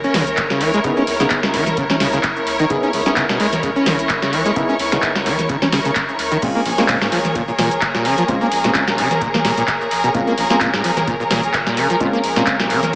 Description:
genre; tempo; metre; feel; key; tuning
acid house; 129 BPM; 4/4; swing 55% on 16ths; unclear; A4 = 438 Hz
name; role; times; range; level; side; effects
string machine, full ensemble; sustained chords; 0.0-13.0 s; Bb4; -24 LUFS; equal; ensemble chorus, sidechain pumping
acid bass, saw; riff; 0.0-12.8 s; Bb1 to Db4; -20 LUFS; equal; overdrive, lush chorus, cassette tape, dub echo
booming analog drum machine; drums; 0.0-12.9 s; congas, crash cymbal, finger snaps, handclaps, hi-hat, shaker, snare drum; -20 LUFS; equal; dub echo
rich studio string section; texture; 0.0-13.0 s; Fb4 to Db6; -21 LUFS; equal; sidechain pumping
warm sub bass; bass; 0.1-12.9 s; Bb1 to Db2; -35 LUFS; equal; sidechain pumping
electronic kick drum; drums; 0.4-12.6 s; none; -30 LUFS; equal; none
percussive organ stab; stabs; 0.8-12.6 s; Ab3 to Ab4; -23 LUFS; equal; lush chorus, cassette tape, dub echo
room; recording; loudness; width
moderate plate reverb, RT60 1.6 s; echo-heavy mix, small speaker sound; -15 LUFS; side -24 dB against mid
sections
0.0-13.0 A section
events
none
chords
0.0 Dbm7; 6.4 Bbm7

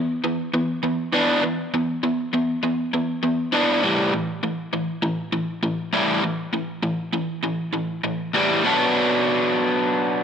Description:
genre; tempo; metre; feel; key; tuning
rock; 100 BPM; 4/4; straight; unclear; A4 = 440 Hz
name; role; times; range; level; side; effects
overdriven electric guitar; solo; 0.0-10.2 s; A2 to D4; -20 LUFS; equal; spring reverb
room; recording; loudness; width
moderate recital hall reverb, RT60 1.3 s; none; -20 LUFS; side -7 dB against mid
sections
0.0-8.6 A section; 8.6-10.2 B section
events
build-up 0.0-8.6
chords
0.0 E5; 3.8 A5; 8.6 Bm

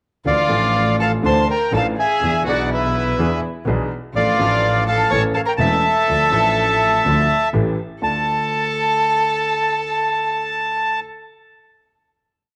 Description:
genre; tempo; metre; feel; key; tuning
tango; 124 BPM; 4/4; rubato; D minor; A4 = 442 Hz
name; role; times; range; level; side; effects
warm concert grand piano; accompaniment; 0.2-11.0 s; E1 to A4; -26 LUFS; equal; none
bandoneon; melody; 0.3-11.0 s; B4 to C#6; -20 LUFS; equal; none
warm violin; second line; 0.3-11.0 s; E4 to C#5; -26 LUFS; equal; none
clear double bass; bass; 0.3-8.2 s; E1 to E2; -26 LUFS; equal; none
room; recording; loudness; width
moderate spring reverb, RT60 1.9 s, small room ambience; none; -18 LUFS; mono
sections
0.3-8.0 A section; 8.0-11.9 final chord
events
none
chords
0.3 Dmadd9; 2.2 E7; 4.2 Dm/A; 5.1 A; 6.1 Dm; 7.5 A7; 8.0 Dm

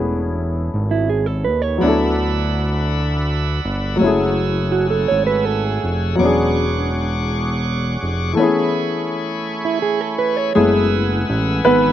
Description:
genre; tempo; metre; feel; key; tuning
slow six-eight R&B; 55 BPM (dotted quarters); 6/8; straight; F# minor; A4 = 441 Hz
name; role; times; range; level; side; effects
dark baby grand piano; accompaniment; 0.0-11.9 s; E3 to B4; -19 LUFS; left 2 dB; slapback echo
fat analog bass; bass; 0.0-11.9 s; E1 to D#2; -20 LUFS; right 1 dB; none
mellow electric guitar; second line; 0.9-6.2, 9.6-10.7 s; E4 to C#5; -20 LUFS; right 6 dB; slapback echo
bright tonewheel organ; sustained chords; 1.8-11.9 s; A3 to E6; -25 LUFS; right 1 dB; overdrive, slow rotary speaker
room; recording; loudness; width
little or no reverb; recorded outdoors, with no room sound; -16 LUFS; side -11 dB against mid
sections
0.0-10.5 A section; 10.5-11.9 B section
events
grand piano solo 10.5-11.9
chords
0.0 Amaj9/E; 1.8 D69; 4.0 F#m9; 6.2 E13; 8.4 Amaj9/E; 10.5 F#m11

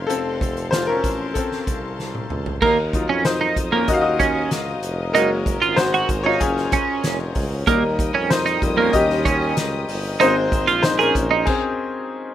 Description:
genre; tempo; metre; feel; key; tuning
piano-driven pop; 95 BPM; 4/4; straight; unclear; A4 = 440 Hz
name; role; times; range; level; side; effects
bright upright piano; accompaniment; 0.0-12.3 s; Db3 to F5; -21 LUFS; left 3 dB; plate reverb
bright studio string section; sustained chords; 0.0-11.5 s; Bb4 to Eb6; -34 LUFS; left 5 dB; none
warm tuba; bass; 0.0-11.4 s; F1 to F2; -27 LUFS; right 1 dB; none
loose indie drum kit; drums; 0.1-11.6 s; crash cymbal, hi-hat, kick drum, snare drum, toms; -25 LUFS; equal; none
twelve-string electric guitar; riff; 2.6-11.5 s; Bb3 to Ab4; -18 LUFS; right 6 dB; analog chorus
room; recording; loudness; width
moderate studio reverb, RT60 0.5 s; rough home demo mix; -17 LUFS; side -11 dB against mid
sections
0.0-2.6 A section; 2.6-12.3 B section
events
upright piano solo 0.0-2.6, 2.6-12.3; drum fill 2.0-2.6; stop 11.5-12.3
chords
0.1 F; 2.6 Ebmadd9; 5.1 Gbadd9; 7.7 Eb; 10.2 Abadd9

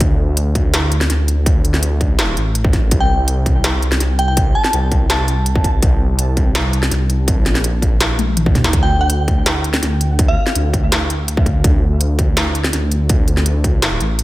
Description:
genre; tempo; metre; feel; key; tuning
half-time drum and bass; 165 BPM; 4/4; half-time; D minor; A4 = 439 Hz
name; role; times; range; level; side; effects
dark detuned saw bass; bass; 0.0-14.2 s; A1 to Eb2; -16 LUFS; equal; none
electronic kick drum; drums; 0.0-13.7 s; none; -16 LUFS; equal; distortion
industrial drum kit; drums; 0.0-14.2 s; hi-hat, snare drum, toms; -19 LUFS; equal; none
glassy synth bell; melody; 3.0-5.6, 8.8-10.6 s; F5 to A5; -23 LUFS; equal; chorus, dub echo
room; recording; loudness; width
light reverb, digital ambience; echo-heavy mix; -13 LUFS; side -17 dB against mid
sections
0.0-14.2 A section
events
drum fill 8.2-8.7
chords
0.0 D5; 2.9 N.C.

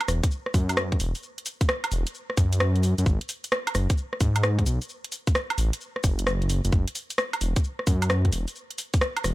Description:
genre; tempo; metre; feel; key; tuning
UK garage, two-step garage; 131 BPM; 4/4; swing 66% on 16ths; F# minor; A4 = 441 Hz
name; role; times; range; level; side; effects
garage drum kit; drums; 0.0-9.3 s; hi-hat, rim click, shaker, woodblock; -28 LUFS; right 1 dB; overdrive
dark detuned saw bass; bass; 0.1-9.3 s; E1 to G#2; -24 LUFS; equal; none
electronic kick drum; drums; 0.2-9.0 s; none; -23 LUFS; equal; overdrive
room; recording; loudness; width
little or no reverb; none; -23 LUFS; side -18 dB against mid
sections
0.0-9.3 A section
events
none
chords
none

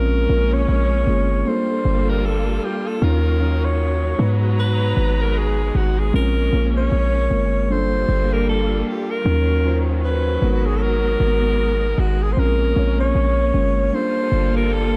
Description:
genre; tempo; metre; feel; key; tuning
R&B; 77 BPM; 4/4; swing 58% on 16ths; unclear; A4 = 440 Hz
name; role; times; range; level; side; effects
breathy alto saxophone; melody; 0.0-15.0 s; Gb4 to Db5; -26 LUFS; equal; none
muted felt-like synth keys; accompaniment; 0.0-15.0 s; Gb3 to Db5; -27 LUFS; equal; chorus
warm studio string section; sustained chords; 0.0-15.0 s; Eb3 to Bb5; -30 LUFS; equal; none
warm 808-style bass; bass; 0.0-15.0 s; G1 to Ab2; -21 LUFS; equal; none
room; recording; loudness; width
light reverb, small room ambience; dark, warm production; -19 LUFS; mono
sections
0.0-15.0 A section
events
none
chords
0.0 Bbm9; 1.5 Gm9; 3.0 Ebm9; 4.2 Abm9; 6.1 Bbm9; 7.7 Gm9; 9.3 Ebm9; 10.4 Abm9; 12.4 Bbm9; 13.9 Gm9

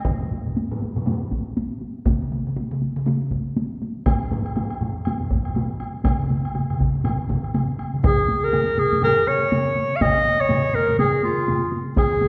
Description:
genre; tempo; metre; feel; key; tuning
japanese traditional, taiko drum ensemble; 121 BPM; 4/4; swing 60% on 16ths; unclear; A4 = 436 Hz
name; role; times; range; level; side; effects
taiko ensemble; percussion; 0.0-12.1 s; none; -27 LUFS; equal; none
taiko ensemble; percussion; 0.1-12.3 s; none; -30 LUFS; equal; none
taiko ensemble; percussion; 0.1-12.3 s; none; -30 LUFS; equal; none
solo taiko drums; percussion; 2.1-12.3 s; none; -29 LUFS; equal; none
woodblock; percussion; 4.1-12.1 s; none; -37 LUFS; equal; none
warm clarinet; melody; 8.1-12.3 s; F4 to F5; -22 LUFS; equal; none
room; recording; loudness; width
wet recital hall reverb, RT60 1.8 s; recorded in a church or concert hall; -22 LUFS; mono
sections
0.1-8.0 A section; 8.0-12.3 B section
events
none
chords
none

